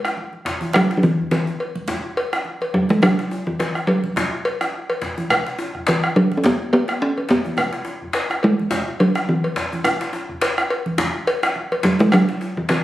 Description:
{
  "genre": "west african traditional, West African drum ensemble",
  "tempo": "105 BPM",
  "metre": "4/4",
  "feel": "swing 56% on 16ths",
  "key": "E major pentatonic",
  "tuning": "A4 = 441 Hz",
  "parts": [
    { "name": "talking drum", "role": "melody", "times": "0.0-12.8 s", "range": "E3 to C#4", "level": "-17 LUFS", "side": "equal", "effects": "none" },
    { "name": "bombo", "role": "percussion", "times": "0.0-12.8 s", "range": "none", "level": "-24 LUFS", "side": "right 1 dB", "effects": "none" },
    { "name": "djembe", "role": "percussion", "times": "0.1-12.8 s", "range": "none", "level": "-26 LUFS", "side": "left 2 dB", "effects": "none" },
    { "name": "congas", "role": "percussion", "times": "0.2-12.5 s", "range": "none", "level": "-30 LUFS", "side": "right 3 dB", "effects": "none" },
    { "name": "cowbell", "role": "percussion", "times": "0.7-12.8 s", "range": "none", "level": "-25 LUFS", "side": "left 1 dB", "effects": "none" }
  ],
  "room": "moderate studio reverb, RT60 0.6 s",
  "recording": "recorded on a phone in the room, studio reverb, compression",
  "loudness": "-18 LUFS",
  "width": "side -14 dB against mid",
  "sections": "0.0-12.8 A section",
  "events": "none",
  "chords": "none"
}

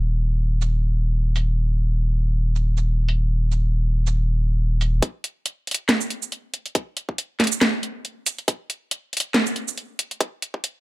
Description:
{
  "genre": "deep dubstep",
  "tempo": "139 BPM",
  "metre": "4/4",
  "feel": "swing 56% on 16ths, half-time",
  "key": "unclear",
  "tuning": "A4 = 440 Hz",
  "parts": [
    { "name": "soft dub sub bass", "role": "bass", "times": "0.0-5.0 s", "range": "Eb1", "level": "-19 LUFS", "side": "equal", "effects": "none" },
    { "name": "garage drum kit", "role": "drums", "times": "0.6-10.7 s", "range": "hi-hat, shaker, snare drum", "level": "-21 LUFS", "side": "right 1 dB", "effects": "low-pass filter on hats, low-pass filter on perc, low-pass filter on snare, low-pass filter on room" },
    { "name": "electronic kick drum", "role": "drums", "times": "5.0-10.6 s", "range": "none", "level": "-23 LUFS", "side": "equal", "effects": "high-pass filter on kick, high-pass filter on room" }
  ],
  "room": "little or no reverb",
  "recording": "high-pass filter",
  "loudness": "-21 LUFS",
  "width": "side -18 dB against mid",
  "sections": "0.0-5.0 A section; 5.0-10.8 B section",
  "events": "build-up 5.0-10.8",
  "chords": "none"
}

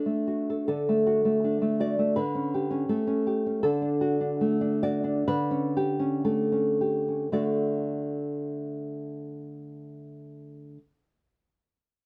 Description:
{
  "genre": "romantic piece for solo classical guitar",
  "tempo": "51-83 BPM",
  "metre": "2/4",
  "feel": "rubato",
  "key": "D major",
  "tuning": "A4 = 437 Hz",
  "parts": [
    { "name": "nylon-string guitar", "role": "solo", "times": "0.0-10.8 s", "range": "D3 to D5", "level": "-28 LUFS", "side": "equal", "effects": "none" }
  ],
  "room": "light reverb",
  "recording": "none",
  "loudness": "-27 LUFS",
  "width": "mono",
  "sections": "0.7-7.3 A section; 7.3-11.2 B section",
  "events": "slowing down 2.9-7.3",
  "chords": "0.0 D; 2.2 A7/D; 3.6 D; 5.3 A7/D; 7.3 D"
}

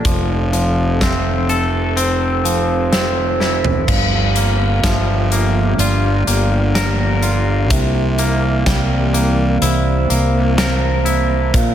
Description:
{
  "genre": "post-rock",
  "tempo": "63 BPM",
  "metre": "4/4",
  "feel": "straight",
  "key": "G dorian",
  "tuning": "A4 = 438 Hz",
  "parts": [
    { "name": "glassy FM pad", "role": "sustained chords", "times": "0.0-11.7 s", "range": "E3 to A5", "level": "-24 LUFS", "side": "right 2 dB", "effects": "ensemble chorus, built-in reverb" },
    { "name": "twangy electric guitar", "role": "arpeggios", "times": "0.0-11.7 s", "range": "G2 to Bb4", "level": "-21 LUFS", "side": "left 3 dB", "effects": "spring reverb, digital delay" },
    { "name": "vibraphone with soft mallets", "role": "arpeggios", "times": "0.0-11.7 s", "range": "C5 to F5", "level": "-25 LUFS", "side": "right 8 dB", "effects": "digital delay" },
    { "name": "fuzz fingered electric bass", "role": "bass", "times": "0.0-11.7 s", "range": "F1 to C2", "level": "-17 LUFS", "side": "equal", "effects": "overdrive" },
    { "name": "big rock drum kit", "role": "drums", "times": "0.0-11.7 s", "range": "crash cymbal, hi-hat, kick drum, snare drum, toms", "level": "-20 LUFS", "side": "equal", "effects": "none" }
  ],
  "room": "light reverb, studio reverb",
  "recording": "none",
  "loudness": "-14 LUFS",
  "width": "side -10 dB against mid",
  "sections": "0.0-3.9 A section; 3.9-11.7 B section",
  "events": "drum fill 3.4-3.9",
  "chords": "0.0 Fmaj7; 3.9 Gm7; 7.7 C7"
}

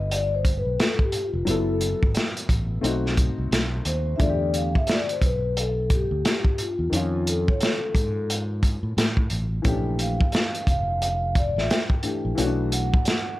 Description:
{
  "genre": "hip hop, jazz-hop",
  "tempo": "88 BPM",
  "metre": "4/4",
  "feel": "swing 61% on 16ths",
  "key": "unclear",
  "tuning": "A4 = 440 Hz",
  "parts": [
    { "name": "vibraphone with soft mallets", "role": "melody", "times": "0.0-13.4 s", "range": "E4 to G5", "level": "-28 LUFS", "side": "left 2 dB", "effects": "slapback echo, plate reverb" },
    { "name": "dark grand piano", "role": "accompaniment", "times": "0.0-13.4 s", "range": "D3 to B4", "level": "-30 LUFS", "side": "left 3 dB", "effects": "plate reverb" },
    { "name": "fretless electric bass", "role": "bass", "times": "0.0-13.0 s", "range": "F1 to A2", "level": "-26 LUFS", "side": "equal", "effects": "none" },
    { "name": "crunchy breakbeat drum kit", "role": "drums", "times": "0.1-13.3 s", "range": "hi-hat, kick drum, snare drum", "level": "-23 LUFS", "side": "equal", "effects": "none" }
  ],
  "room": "light reverb",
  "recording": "none",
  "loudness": "-21 LUFS",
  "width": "side -16 dB against mid",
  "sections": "0.0-13.4 A section",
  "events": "vibraphone solo 0.0-13.4",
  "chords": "0.0 Csus2 (rootless); 1.5 F#m11; 2.8 B7b9; 4.2 Em7; 6.9 F7alt; 9.7 Bb6; 12.4 Bm7"
}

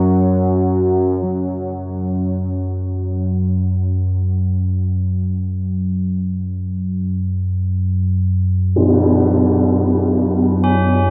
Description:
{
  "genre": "dark ambient drone",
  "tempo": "free time",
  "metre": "none",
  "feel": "none",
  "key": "unclear",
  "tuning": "A4 = 440 Hz",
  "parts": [
    { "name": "deep dark ambient pad", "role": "sustained chords", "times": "0.0-1.3 s", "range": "F#3 to F#5", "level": "-27 LUFS", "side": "equal", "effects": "chorus, built-in reverb" },
    { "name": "analog drone", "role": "drone", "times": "0.0-11.1 s", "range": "F#2 to F#3", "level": "-20 LUFS", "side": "equal", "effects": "chorus" },
    { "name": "tam-tam", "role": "percussion", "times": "8.8-9.0 s", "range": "none", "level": "-17 LUFS", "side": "equal", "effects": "low-pass filter on cymbals" },
    { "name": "tubular bells", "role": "arpeggios", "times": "10.6-11.1 s", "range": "C#4", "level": "-21 LUFS", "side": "equal", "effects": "none" }
  ],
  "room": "wet huge ambient reverb, RT60 8.3 s",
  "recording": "dark, warm production",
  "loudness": "-18 LUFS",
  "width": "mono",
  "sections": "0.0-1.3 A section; 1.3-11.1 B section",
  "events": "filter sweep on synth drone 1.3-11.1",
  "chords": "0.0 F#5"
}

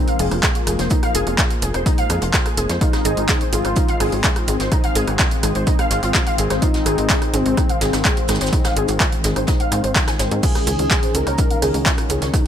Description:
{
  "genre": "melodic techno",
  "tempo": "126 BPM",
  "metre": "4/4",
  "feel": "straight",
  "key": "unclear",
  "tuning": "A4 = 440 Hz",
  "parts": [
    { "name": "wide unison lead", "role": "melody", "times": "0.0-11.8 s", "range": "C4 to Bb4", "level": "-26 LUFS", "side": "left 1 dB", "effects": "sidechain pumping, ping-pong delay" },
    { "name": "warm analog pad", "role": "sustained chords", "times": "0.0-12.5 s", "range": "Eb3 to Db4", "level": "-26 LUFS", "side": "left 2 dB", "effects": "lush chorus, sidechain pumping" },
    { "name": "warbly dusty pluck", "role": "arpeggios", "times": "0.0-12.4 s", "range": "Eb4 to Ab5", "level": "-24 LUFS", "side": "equal", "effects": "ensemble chorus, sidechain pumping, tape echo" },
    { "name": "punchy analog drum machine", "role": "drums", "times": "0.1-12.4 s", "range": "crash cymbal, handclaps, hi-hat, rim click", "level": "-23 LUFS", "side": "right 1 dB", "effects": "none" },
    { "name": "tight sequencer bass", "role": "bass", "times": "0.2-12.3 s", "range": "F1 to Ab2", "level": "-22 LUFS", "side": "equal", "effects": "sidechain pumping" },
    { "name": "vintage brush drum kit", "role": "drums", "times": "0.2-12.5 s", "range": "hi-hat, shaker, snare drum", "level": "-30 LUFS", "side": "right 2 dB", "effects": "none" },
    { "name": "electronic kick drum", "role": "drums", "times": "0.4-12.4 s", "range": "none", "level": "-20 LUFS", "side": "equal", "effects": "none" }
  ],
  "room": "little or no reverb",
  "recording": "none",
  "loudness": "-16 LUFS",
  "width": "side -9 dB against mid",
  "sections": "0.0-12.5 A section",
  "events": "none",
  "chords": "0.0 Fm; 2.8 Ab; 10.4 Dbsus2"
}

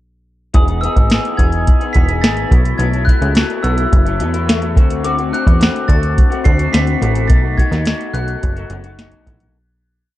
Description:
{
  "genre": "indie pop, bedroom pop",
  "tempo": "107 BPM",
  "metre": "4/4",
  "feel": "straight",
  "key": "unclear",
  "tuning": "A4 = 444 Hz",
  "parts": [
    { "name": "glockenspiel with soft plastic mallets", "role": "melody", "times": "0.5-9.2 s", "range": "D6 to C7", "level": "-22 LUFS", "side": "right 1 dB", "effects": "analog chorus, slapback echo" },
    { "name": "electric guitar through a small old amp", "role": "accompaniment", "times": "0.5-9.6 s", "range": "B2 to G#4", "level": "-22 LUFS", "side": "left 5 dB", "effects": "analog chorus, vibrato effect" },
    { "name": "plucky analog bass", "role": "bass", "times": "0.5-9.5 s", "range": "E1 to E2", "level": "-18 LUFS", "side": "equal", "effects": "none" },
    { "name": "soft vintage rhythm box", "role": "drums", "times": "0.5-9.5 s", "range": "hi-hat, kick drum, snare drum", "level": "-13 LUFS", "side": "equal", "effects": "none" }
  ],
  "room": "digital ambience",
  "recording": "dark, warm production",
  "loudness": "-12 LUFS",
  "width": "side -15 dB against mid",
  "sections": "0.5-9.5 verse",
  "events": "fade-out 7.3-9.5",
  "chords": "0.5 Emaj7; 2.5 B7sus4; 4.8 D7; 7.3 B7"
}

